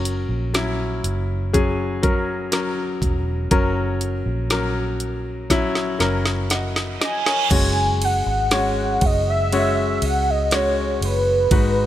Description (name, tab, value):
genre	pop ballad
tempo	60 BPM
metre	4/4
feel	straight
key	unclear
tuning	A4 = 440 Hz
part	clear concert grand piano	accompaniment	0.0-11.9 s	G#2 to F#5	-23 LUFS	left 3 dB	none
part	vintage muted fingered electric bass	bass	0.0-11.9 s	E1 to C#2	-24 LUFS	right 1 dB	none
part	smooth R&B drum kit	drums	0.1-11.7 s	crash cymbal, hi-hat, kick drum, ride cymbal, snare drum	-23 LUFS	right 1 dB	none
part	reverse cymbal and impact	sound effects	7.0-11.5 s	none	-28 LUFS	right 7 dB	none
part	warm velvety synth lead	melody	7.0-11.9 s	B4 to G#5	-21 LUFS	right 1 dB	chorus
room	light reverb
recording	bright 1980s-style digital production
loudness	-18 LUFS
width	side -12 dB against mid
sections	0.0-7.5 A section; 7.5-11.9 B section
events	drum fill 5.5-7.5; reverse cymbal 7.0-7.5; impact 7.5-11.5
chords	0.0 F#; 7.5 F#sus2